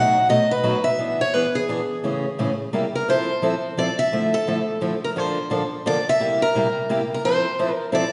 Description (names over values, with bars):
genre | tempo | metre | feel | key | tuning
jazz | 173 BPM | 3/4 | swing 62% on 8ths | A major, F major from 3.1 s | A4 = 440 Hz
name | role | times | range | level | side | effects
picked steel-string acoustic guitar | melody | 0.0-8.1 s | G#4 to F#5 | -24 LUFS | equal | none
picked steel-string acoustic guitar | accompaniment | 0.0-8.0 s | A2 to A4 | -26 LUFS | equal | none
room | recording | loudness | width
wet recital hall reverb, RT60 1.7 s | recorded in a church or concert hall, nothing above 10.5 kHz | -22 LUFS | mono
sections
0.0-3.1 A section; 3.1-8.1 B section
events
none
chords
0.0 B7; 1.0 E7; 2.0 Amaj7; 2.7 C7; 3.1 Fmaj7; 4.1 Dmadd9; 5.2 Bbmaj7/D; 6.2 C7; 7.2 Fmaj7